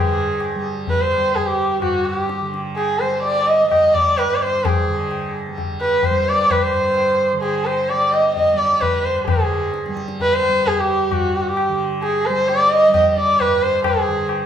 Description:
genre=indian classical, Hindustani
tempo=129 BPM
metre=5/4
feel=straight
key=unclear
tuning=A4 = 436 Hz
part: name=warm sarangi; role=melody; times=0.0-14.5 s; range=F#4 to Eb5+23c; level=-17 LUFS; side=equal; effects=none
part: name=tanpura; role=drone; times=0.0-14.5 s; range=G2 to G3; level=-28 LUFS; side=right 2 dB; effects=none
part: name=tabla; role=percussion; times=0.4-14.5 s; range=none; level=-25 LUFS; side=left 4 dB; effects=none
room=wet large studio reverb, RT60 1.2 s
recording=band playing live in one room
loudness=-16 LUFS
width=side -9 dB against mid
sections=0.0-9.3 A section; 9.3-14.5 B section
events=speeding up 0.0-14.5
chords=none

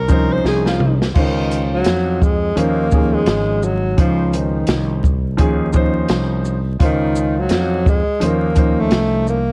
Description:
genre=hip hop, jazz-hop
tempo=85 BPM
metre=4/4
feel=swing 58% on 16ths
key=Db major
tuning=A4 = 440 Hz
part: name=breathy alto saxophone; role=melody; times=0.0-9.5 s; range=Eb3 to C5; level=-22 LUFS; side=equal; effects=slapback echo
part: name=fretless electric bass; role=bass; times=0.0-9.5 s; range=Ab1 to F2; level=-23 LUFS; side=equal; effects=none
part: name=dark concert grand piano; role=accompaniment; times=0.1-9.4 s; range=Eb3 to C5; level=-23 LUFS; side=equal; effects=none
part: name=open jazz drum kit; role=drums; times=0.1-9.5 s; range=crash cymbal, hi-hat, kick drum, shaker, snare drum, toms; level=-20 LUFS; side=equal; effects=vintage 12-bit sampler grit
room=light reverb, small room ambience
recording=dark, warm production, vinyl crackle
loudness=-17 LUFS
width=mono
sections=0.0-1.2 A section; 1.2-9.5 B section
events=alto saxophone solo 0.0-1.2; drum fill 0.4-1.2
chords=0.0 Dbmaj9

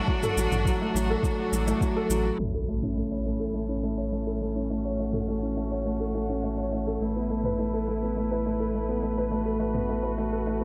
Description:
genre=piano and strings electronica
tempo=104 BPM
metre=4/4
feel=straight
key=A major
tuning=A4 = 440 Hz
part: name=clear string quartet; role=sustained chords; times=0.0-10.6 s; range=A3 to B4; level=-37 LUFS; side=equal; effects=none
part: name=felt-muted upright piano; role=riff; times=0.0-10.6 s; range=F#3 to C#5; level=-30 LUFS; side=equal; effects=delay
part: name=electronic kick drum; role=drums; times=0.1-1.9 s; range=none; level=-30 LUFS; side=equal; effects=overdrive
part: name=deep house drum kit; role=drums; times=0.2-10.6 s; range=crash cymbal, shaker, toms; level=-38 LUFS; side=equal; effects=overdrive
part: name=warm sub bass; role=bass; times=0.4-10.6 s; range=A1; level=-34 LUFS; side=equal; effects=sidechain pumping
part: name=impact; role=sound effects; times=2.4-4.7 s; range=none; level=-38 LUFS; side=equal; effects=none
room=moderate echo chamber reverb, RT60 2.4 s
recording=low-pass filter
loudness=-28 LUFS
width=mono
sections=0.0-2.4 A section; 2.4-10.6 B section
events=impact 2.4-4.7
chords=0.0 D/A; 2.4 A; 7.0 Esus4/A

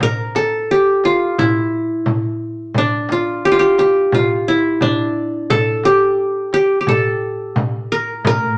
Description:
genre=Arabic maqam ensemble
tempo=87 BPM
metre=4/4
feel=straight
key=unclear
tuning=A4 = 440 Hz
part: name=qanun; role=melody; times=0.0-8.6 s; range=C4 to Bb4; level=-17 LUFS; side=equal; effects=none
part: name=darbuka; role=percussion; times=0.0-8.4 s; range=none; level=-27 LUFS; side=equal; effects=none
part: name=frame drum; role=percussion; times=0.0-8.4 s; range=none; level=-25 LUFS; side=equal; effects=none
part: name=muted double bass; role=drone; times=8.2-8.6 s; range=A2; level=-26 LUFS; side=equal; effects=none
room=moderate large studio reverb, RT60 0.9 s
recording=none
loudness=-17 LUFS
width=mono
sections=0.0-8.2 A section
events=none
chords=none

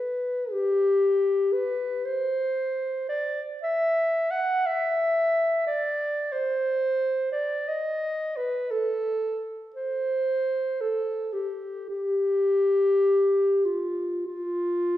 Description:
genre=classical, free, expressive piece for unaccompanied clarinet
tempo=48-61 BPM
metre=4/4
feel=rubato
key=unclear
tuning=A4 = 440 Hz
part: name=warm clarinet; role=solo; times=0.0-15.0 s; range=F4 to F#5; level=-23 LUFS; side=equal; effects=none
room=wet recital hall reverb, RT60 1.7 s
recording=heard from further back in the room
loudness=-23 LUFS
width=side -13 dB against mid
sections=0.0-15.0 A section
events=none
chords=none

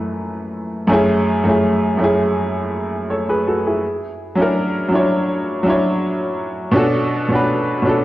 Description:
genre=hip hop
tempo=82 BPM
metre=4/4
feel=swing 56% on 16ths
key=F# minor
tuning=A4 = 439 Hz
part: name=clear upright piano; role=solo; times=0.0-8.0 s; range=F#2 to C#5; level=-16 LUFS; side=equal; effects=low-pass filter
room=wet recital hall reverb, RT60 1.4 s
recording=dark, warm production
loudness=-16 LUFS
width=side -16 dB against mid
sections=0.9-8.0 A section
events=none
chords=0.0 F#m7; 0.9 F#m9; 3.8 F#7b13; 6.7 Bm7

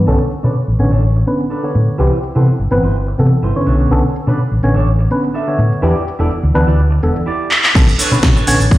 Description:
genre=filtered disco house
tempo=125 BPM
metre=4/4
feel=straight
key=B minor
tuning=A4 = 440 Hz
part: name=bright tine electric piano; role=accompaniment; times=0.0-8.6 s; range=D3 to C#5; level=-17 LUFS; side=equal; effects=phaser, sidechain pumping, low-pass filter
part: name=hollow-body short-scale fingered electric bass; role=bass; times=0.0-8.8 s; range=E1 to C3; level=-14 LUFS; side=equal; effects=sidechain pumping, low-pass filter
part: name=clean electric guitar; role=riff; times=0.1-8.7 s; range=D4 to E5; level=-23 LUFS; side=right 2 dB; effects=sidechain pumping, low-pass filter
part: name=maracas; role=percussion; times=0.1-7.2 s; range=none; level=-52 LUFS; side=right 1 dB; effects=none
part: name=house drum kit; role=drums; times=7.5-8.8 s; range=cabasa, crash cymbal, handclaps, hi-hat, snare drum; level=-14 LUFS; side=equal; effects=sidechain pumping on cymbals, sidechain pumping on perc, sidechain pumping on hats
part: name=electronic kick drum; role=drums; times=7.8-8.8 s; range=none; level=-11 LUFS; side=equal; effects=none
room=moderate echo chamber reverb, RT60 1.3 s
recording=played on a big sound system in a bare room, stone room reverb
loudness=-12 LUFS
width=side -16 dB against mid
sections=0.0-7.8 A section; 7.8-8.8 B section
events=filter sweep 0.0-7.8; drum fill 7.5; drop 7.8-8.8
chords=0.1 Bm9; 2.0 Cmaj7; 3.7 Bm9; 5.8 Em7; 7.8 Bm9

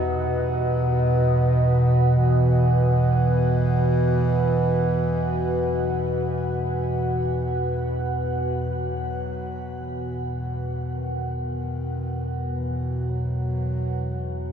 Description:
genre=dark ambient drone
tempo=free time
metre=none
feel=none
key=unclear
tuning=A4 = 441 Hz
part: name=mellow bass clarinet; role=melody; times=0.0-14.5 s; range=B2 to F#3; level=-26 LUFS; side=right 1 dB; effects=shimmer reverb, ping-pong delay
part: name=deep dark ambient pad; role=sustained chords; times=0.0-14.5 s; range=F#4 to F#5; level=-27 LUFS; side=equal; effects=chorus, built-in reverb, shimmer reverb
part: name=tubular bells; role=arpeggios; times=0.0-8.8 s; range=D#4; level=-44 LUFS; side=left 1 dB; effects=shimmer reverb, ping-pong delay
part: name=deep rumbling drone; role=drone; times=0.0-14.5 s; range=E2 to B2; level=-24 LUFS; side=right 1 dB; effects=built-in reverb, wide subtle chorus
room=wet huge ambient reverb, RT60 7.1 s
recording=dark, warm production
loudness=-21 LUFS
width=side -8 dB against mid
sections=0.0-8.7 A section; 8.7-14.5 B section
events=fade-out on tubular bells 0.0-8.7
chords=0.0 Esus2

